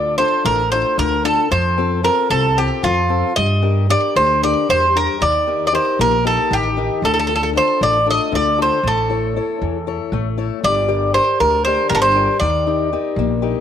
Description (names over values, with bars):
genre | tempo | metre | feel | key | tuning
greek folk | 231 BPM (eighths) | 7/8 | straight | D phrygian | A4 = 444 Hz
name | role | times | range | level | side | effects
Greek bouzouki | melody | 0.0-13.6 s | F4 to Eb5 | -16 LUFS | right 1 dB | slapback echo
fingerpicked steel-string acoustic guitar | accompaniment | 0.0-13.6 s | C3 to D5 | -22 LUFS | left 11 dB | none
upright bass | bass | 0.0-13.5 s | G1 to G2 | -22 LUFS | right 1 dB | none
room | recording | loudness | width
light reverb | 1960s-style stereo | -14 LUFS | side -9 dB against mid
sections
0.0-13.6 A section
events
speeding up 0.0-13.6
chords
0.0 Dm; 1.5 F; 3.4 Gm; 5.2 Eb; 7.0 Dm; 8.8 A; 10.6 Gm; 12.4 Eb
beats
0.18 0.45 0.72 0.98 1.25 | 1.51 1.78 2.05 2.31 2.58 2.84 3.10 | 3.37 3.63 3.90 4.16 4.42 4.68 4.95 | 5.21 5.47 5.73 5.99 6.25 6.51 6.77 | 7.03 7.29 7.55 7.81 8.07 8.33 8.58 | 8.84 9.10 9.36 9.61 9.87 10.13 10.38 | 10.64 10.89 11.15 11.40 11.66 11.91 12.16 | 12.42 12.67 12.92 13.18 13.43